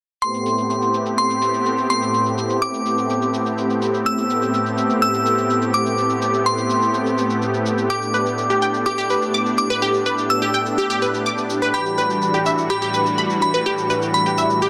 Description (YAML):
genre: progressive house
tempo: 125 BPM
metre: 4/4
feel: straight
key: A dorian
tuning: A4 = 440 Hz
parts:
  - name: glassy synth bell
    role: melody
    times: 0.2-14.7 s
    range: B5 to E6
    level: -24 LUFS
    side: equal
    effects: chorus, digital delay
  - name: filtered supersaw swell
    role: sustained chords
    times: 0.2-14.7 s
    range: A2 to G4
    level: -23 LUFS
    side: equal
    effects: none
  - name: shaker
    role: drums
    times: 0.2-14.7 s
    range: none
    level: -38 LUFS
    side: equal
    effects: overdrive, low-pass filter on perc
  - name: unison pluck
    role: arpeggios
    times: 7.9-14.7 s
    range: G4 to D6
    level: -23 LUFS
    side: equal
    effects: phaser, delay
  - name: reverse cymbal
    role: sound effects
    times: 14.6-14.7 s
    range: none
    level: barely audible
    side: none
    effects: none
room: moderate lush hall reverb, RT60 2.5 s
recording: dense, heavily limited modern master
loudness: -20 LUFS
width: mono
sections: 0.2-14.7 A section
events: none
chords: 0.2 Am7; 7.9 G/A; 11.7 Em7/A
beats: | 0.22 0.70 1.18 1.66 | 2.14 2.62 3.10 3.58 | 4.06 4.54 5.02 5.50 | 5.98 6.46 6.94 7.42 | 7.90 8.38 8.86 9.34 | 9.82 10.30 10.78 11.26 | 11.74 12.22 12.70 13.18 | 13.66 14.14 14.62